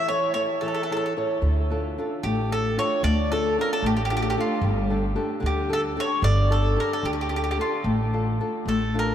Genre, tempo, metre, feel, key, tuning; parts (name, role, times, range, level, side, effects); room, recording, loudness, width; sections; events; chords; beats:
italian folk, Italian serenade; 74 BPM (dotted quarters); 6/8; rubato; D harmonic minor; A4 = 440 Hz
mandolin; melody; 0.0-9.1 s; F4 to D5; -26 LUFS; equal
nylon-string guitar; accompaniment; 0.0-9.1 s; D3 to C#5; -26 LUFS; left 1 dB
upright bass; bass; 1.4-9.1 s; G1 to D2; -25 LUFS; equal
wet cathedral reverb, RT60 6.6 s; in a vast, echoing space; -22 LUFS; side -10 dB against mid
0.0-9.1 A section
0.0 A; 1.4 Dm; 4.6 Gsus2; 7.9 Dm/A
0.61 | 1.43 2.24 | 3.04 3.83 | 4.62 5.43 | 6.23 7.04 | 7.86 8.67